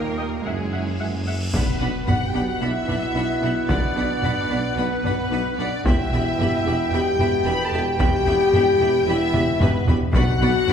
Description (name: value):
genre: cinematic, epic orchestral film score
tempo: 112 BPM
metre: 4/4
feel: straight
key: B minor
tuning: A4 = 441 Hz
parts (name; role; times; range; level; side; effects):
- clear symphonic violin section; melody; 0.0-10.7 s; G#4 to B5; -28 LUFS; left 4 dB; none
- rich symphonic violin section; second line; 0.0-10.7 s; G#4 to B5; -33 LUFS; left 2 dB; none
- bright trombone section; sustained chords; 0.0-10.7 s; A#2 to D4; -31 LUFS; right 6 dB; none
- mellow French horn section; sustained chords; 0.0-10.7 s; G3 to B4; -24 LUFS; left 3 dB; none
- mellow tuba; bass; 0.0-10.7 s; E1 to D#2; -30 LUFS; right 2 dB; none
- rich studio cello section; bass; 0.0-10.7 s; E2 to A#3; -32 LUFS; right 2 dB; none
- rich symphonic double bass section; bass; 0.0-10.7 s; E1 to F#2; -29 LUFS; right 1 dB; none
- cymbal swell and impact; sound effects; 0.9-3.7 s; none; -33 LUFS; left 1 dB; none
- dark symphonic viola section; accompaniment; 0.2-10.7 s; B3 to G5; -29 LUFS; right 1 dB; none
- mellow trumpet; stabs; 1.5-10.7 s; F#5 to G5; -30 LUFS; right 3 dB; none
- taiko ensemble; drums; 1.5-10.7 s; none; -23 LUFS; equal; none
- timpani; percussion; 10.1-10.7 s; B2; -27 LUFS; left 1 dB; none
room: wet scoring stage reverb, RT60 2.0 s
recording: recorded in a church or concert hall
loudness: -19 LUFS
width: side -8 dB against mid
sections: 0.0-1.5 A section; 1.5-10.7 A section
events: cymbal swell 0.9-1.5; impact 1.5-3.7; drum fill 9.3-10.1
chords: 0.4 F#7; 1.5 Bm; 5.8 Em; 10.1 Bm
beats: 0.44 0.99 | 1.53 2.08 2.61 3.15 | 3.69 4.23 4.77 5.31 | 5.85 6.39 6.92 7.46 | 8.00 8.54 9.07 9.61 | 10.14 10.68